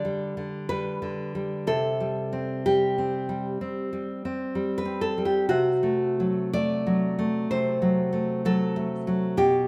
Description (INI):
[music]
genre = romantic piece for solo classical guitar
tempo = 63 BPM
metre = 4/4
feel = rubato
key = unclear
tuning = A4 = 440 Hz
[part]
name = nylon-string guitar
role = solo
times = 0.0-9.7 s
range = B2 to D5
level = -26 LUFS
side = equal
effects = none
[sound]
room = moderate concert hall reverb, RT60 1.9 s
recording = none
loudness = -26 LUFS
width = mono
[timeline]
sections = 0.0-9.7 A section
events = none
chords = 0.0 G; 1.7 C5; 5.5 D7/C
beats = 0.70 | 1.68 2.65 3.61 4.56 | 5.50 6.54 7.50 8.44 | 9.38